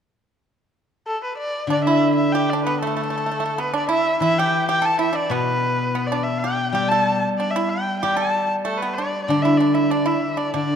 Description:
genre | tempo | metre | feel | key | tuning
chinese traditional, Chinese chamber ensemble | 95 BPM | 2/4 | straight | D zhi mode | A4 = 440 Hz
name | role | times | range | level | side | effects
warm erhu | melody | 1.1-10.8 s | A4 to A5 | -23 LUFS | left 1 dB | none
pipa | second line | 1.7-10.8 s | A3 to A4 | -24 LUFS | right 4 dB | none
steel-string zither | accompaniment | 1.7-10.8 s | B2 to G3 | -22 LUFS | left 1 dB | none
room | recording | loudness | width
wet scoring stage reverb, RT60 2.1 s | dark, warm production | -18 LUFS | side -8 dB against mid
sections
0.4-1.7 A section; 1.7-10.8 B section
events
none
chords
none

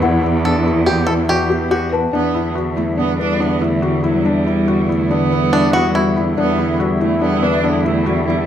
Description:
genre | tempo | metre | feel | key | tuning
contemporary instrumental, chamber music in an uneven meter | 142 BPM | 5/4 | straight | E minor | A4 = 440 Hz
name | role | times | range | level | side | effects
rich cello | melody | 0.0-8.5 s | E2 to D4 | -22 LUFS | right 6 dB | none
evolving wavetable pad | sustained chords | 0.0-8.5 s | D3 to F#5 | -21 LUFS | left 2 dB | ensemble chorus, built-in reverb
felt-muted upright piano | arpeggios | 0.0-8.5 s | B3 to B4 | -20 LUFS | left 4 dB | none
clear cello | bass | 0.0-8.5 s | E2 | -19 LUFS | right 1 dB | none
small celesta | texture | 0.0-3.0 s | F#5 to A5 | -25 LUFS | left 6 dB | none
bluegrass banjo | second line | 0.5-2.1, 5.5-6.2 s | D4 to A4 | -20 LUFS | equal | none
room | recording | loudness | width
moderate recital hall reverb, RT60 1.8 s | minimal, uncompressed stereo recording | -14 LUFS | side -10 dB against mid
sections
0.0-2.1 A section; 2.1-8.5 B section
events
none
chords
0.0 Emadd9

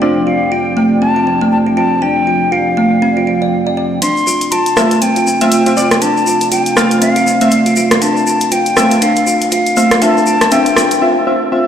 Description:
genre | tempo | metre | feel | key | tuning
afro house | 120 BPM | 4/4 | swing 58% on 16ths | D minor | A4 = 445 Hz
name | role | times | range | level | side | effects
dark analog pad | sustained chords | 0.0-11.0 s | F3 to G5 | -20 LUFS | equal | chorus
kalimba | arpeggios | 0.0-10.8 s | A3 to D5 | -14 LUFS | right 1 dB | tape echo
warm analog keys | stabs | 0.0-11.7 s | C4 to F5 | -18 LUFS | equal | chorus, low-pass filter, tape echo
concert flute | melody | 0.3-11.0 s | F5 to C6 | -16 LUFS | left 2 dB | tape echo
deep house drum kit | drums | 4.0-11.0 s | hi-hat, rim click | -16 LUFS | equal | none
tube shaker | percussion | 4.0-11.0 s | none | -23 LUFS | left 3 dB | none
room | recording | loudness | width
wet lush hall reverb, RT60 2.7 s | played on a big sound system in a bare room, stone room reverb | -10 LUFS | side -8 dB against mid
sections
0.0-4.0 A section; 4.0-11.7 B section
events
filter sweep on analog synth pad 0.0-4.0, 4.0-11.7; build-up 4.0-11.7; break 11.0-11.7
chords
0.0 Dm7; 4.0 Dm9

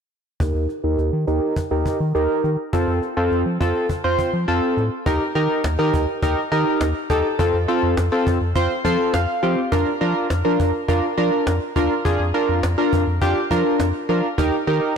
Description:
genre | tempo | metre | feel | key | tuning
synth-pop | 103 BPM | 4/4 | straight | unclear | A4 = 439 Hz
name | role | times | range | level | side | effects
warm analog keys | accompaniment | 0.4-14.9 s | C4 to C6 | -19 LUFS | equal | chorus, low-pass filter
round analog bass | bass | 0.4-14.8 s | Eb2 to F3 | -22 LUFS | left 1 dB | tube saturation
cajon | drums | 0.4-14.7 s | none | -28 LUFS | equal | none
room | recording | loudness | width
moderate lush hall reverb, RT60 2.2 s | blown-out, overdriven recording, overdrive | -18 LUFS | side -6 dB against mid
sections
0.4-5.1 A section; 5.1-15.0 B section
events
filter sweep on synth keys 0.4-5.1; synth keys fill 8.6-9.7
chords
0.4 Eb; 2.7 F; 5.1 Eb; 7.4 F; 9.7 Bb; 14.4 Eb

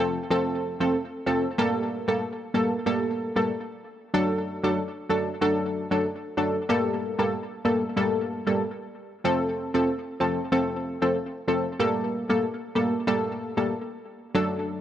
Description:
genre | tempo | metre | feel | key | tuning
dancehall | 94 BPM | 4/4 | swing 56% on 16ths | G minor | A4 = 445 Hz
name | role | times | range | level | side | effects
punchy chord stab | solo | 0.0-14.8 s | F3 to A4 | -24 LUFS | equal | chorus, tape echo
room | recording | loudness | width
light reverb | worn, warbling old tape, cassette tape, warbly pitch drift | -24 LUFS | side -11 dB against mid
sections
0.0-14.8 A section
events
none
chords
0.0 F; 1.6 Gmadd9; 4.1 D; 6.7 Gmadd9; 9.2 F; 11.8 Gmadd9

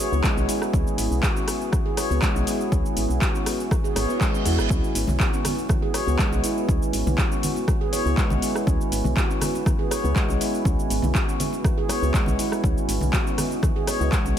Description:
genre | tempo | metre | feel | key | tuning
afro house | 121 BPM | 4/4 | straight | C# minor | A4 = 440 Hz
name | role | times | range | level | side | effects
dark analog pad | sustained chords | 0.0-14.4 s | B3 to D#5 | -31 LUFS | right 1 dB | chorus, sidechain pumping
handpan | arpeggios | 0.0-14.4 s | G#3 to C#5 | -27 LUFS | equal | sidechain pumping, dub echo
deep house drum kit | drums | 0.0-14.3 s | cabasa, handclaps, hi-hat, rim click | -29 LUFS | equal | overdrive
woody FM bass | bass | 0.1-14.3 s | G#1 to E2 | -24 LUFS | equal | sidechain pumping
electronic kick drum | drums | 0.2-14.2 s | none | -24 LUFS | equal | overdrive
reverse cymbal | sound effects | 4.0-4.7 s | none | -35 LUFS | right 5 dB | none
congas | percussion | 4.7-14.3 s | none | -32 LUFS | equal | none
room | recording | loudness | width
little or no reverb | none | -20 LUFS | side -10 dB against mid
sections
0.0-14.4 A section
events
reverse cymbal 4.0-4.7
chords
0.0 C#m11

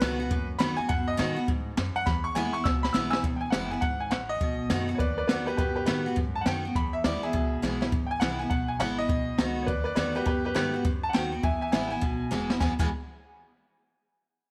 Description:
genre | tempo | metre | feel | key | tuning
rockabilly | 205 BPM | 4/4 | swing 64% on 8ths | E major | A4 = 438 Hz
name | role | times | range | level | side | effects
bright upright piano | melody | 0.0-12.9 s | G4 to E6 | -33 LUFS | equal | none
picked steel-string acoustic guitar | accompaniment | 0.0-12.9 s | E2 to F#4 | -34 LUFS | equal | none
upright bass | bass | 0.0-12.9 s | E1 to A2 | -38 LUFS | equal | none
jazz brush drum kit | drums | 0.0-12.8 s | crash cymbal, hi-hat, kick drum, snare drum | -32 LUFS | equal | none
room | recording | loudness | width
light reverb, small room ambience | none | -28 LUFS | mono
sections
0.0-3.2 A section; 3.2-12.6 B section; 12.6-13.8 C section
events
upright piano solo 0.0-3.2; drum fill 2.1-3.2, 7.6, 12.3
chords
0.0 B7; 2.1 E; 4.4 B7; 6.8 E; 9.1 B7; 11.4 E

